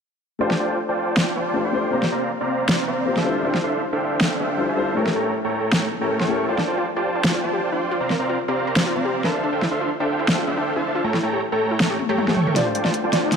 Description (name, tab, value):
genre	future bass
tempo	158 BPM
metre	4/4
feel	half-time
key	F major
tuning	A4 = 440 Hz
part	warm grand piano	accompaniment	0.4-6.5, 12.5-13.4 s	G3 to C5	-26 LUFS	left 4 dB	digital delay
part	dense compressed supersaw	riff	0.4-13.4 s	A3 to C#6	-22 LUFS	right 2 dB	low-pass filter, digital delay
part	dubstep drum kit	drums	0.5-13.4 s	hi-hat, snare drum, toms	-24 LUFS	equal	overdrive
part	wide unison pluck	arpeggios	6.6-12.5 s	D4 to C#5	-28 LUFS	left 2 dB	digital delay
part	mallet-like synth pluck	melody	12.6-13.4 s	D5	-26 LUFS	right 4 dB	wide subtle chorus
part	riser	sound effects	12.8-13.4 s	none	-28 LUFS	left 3 dB	none
room	moderate huge ambient reverb, RT60 6.0 s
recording	dark, warm production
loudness	-19 LUFS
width	side -6 dB against mid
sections	0.4-12.6 A section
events	drum fill 12.0-12.6, 12.6-13.4; riser 12.8-13.4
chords	0.4 F69; 1.9 C7sus4; 3.3 Dm11; 5.0 A7b9; 6.5 F69; 8.0 C7sus4; 9.3 Dm11; 11.0 A7b9; 12.6 F69